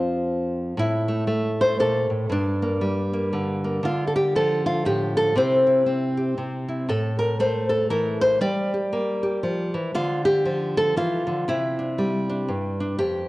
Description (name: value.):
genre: folk, solo fingerstyle acoustic guitar.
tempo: 118 BPM.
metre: 3/4.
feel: swing 60% on 8ths.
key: unclear.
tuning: A4 = 440 Hz.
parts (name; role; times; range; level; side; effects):
nylon-string guitar; solo; 0.0-13.3 s; F2 to D5; -21 LUFS; equal; none.
room: moderate concert hall reverb, RT60 2.0 s.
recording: worn, warbling old tape, cassette tape, warbly pitch drift.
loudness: -21 LUFS.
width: side -18 dB against mid.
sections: 0.8-13.0 A section.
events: none.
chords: 0.0 F5; 0.8 A5; 2.3 Gm; 3.8 Dm; 5.4 C; 6.9 A5; 8.4 Gm; 9.9 Dm; 11.5 Cadd9.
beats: 0.27 | 0.78 1.29 1.79 | 2.30 2.81 3.32 | 3.83 4.34 4.85 | 5.36 5.87 6.38 | 6.88 7.39 7.90 | 8.41 8.92 9.43 | 9.94 10.45 10.96 | 11.46 11.97 12.48 | 12.99.